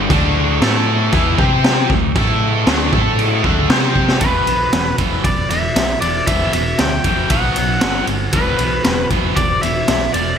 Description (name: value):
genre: hard rock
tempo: 116 BPM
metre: 4/4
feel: straight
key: E minor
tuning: A4 = 440 Hz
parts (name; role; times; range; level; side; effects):
- cranked stack guitar; riff; 0.0-10.4 s; E2 to C5; -24 LUFS; left 11 dB; overdrive, wide subtle chorus
- distorted electric guitar; riff; 0.0-4.2 s; D3 to C5; -22 LUFS; equal; overdrive
- scooped high-gain guitar; riff; 0.0-10.4 s; E2 to C5; -22 LUFS; right 10 dB; distortion
- fingered electric bass; bass; 0.0-10.3 s; E1 to C3; -22 LUFS; equal; none
- raw garage drum kit; drums; 0.1-10.3 s; crash cymbal, kick drum, ride cymbal, snare drum; -18 LUFS; equal; gated reverb
- biting lead guitar; melody; 4.2-10.4 s; B4 to G5; -19 LUFS; left 1 dB; overdrive
room: moderate lush hall reverb, RT60 2.5 s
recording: bright 1980s-style digital production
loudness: -13 LUFS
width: side -8 dB against mid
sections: 0.0-4.2 A section; 4.2-10.4 B section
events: drum fill 4.0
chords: 0.1 D5; 0.6 A5; 1.1 E5; 1.4 C5; 1.9 D5; 2.2 A5; 2.7 D5; 2.9 A5; 3.4 D5; 3.7 C5; 4.2 E5; 7.3 B5; 7.8 G5; 8.3 E5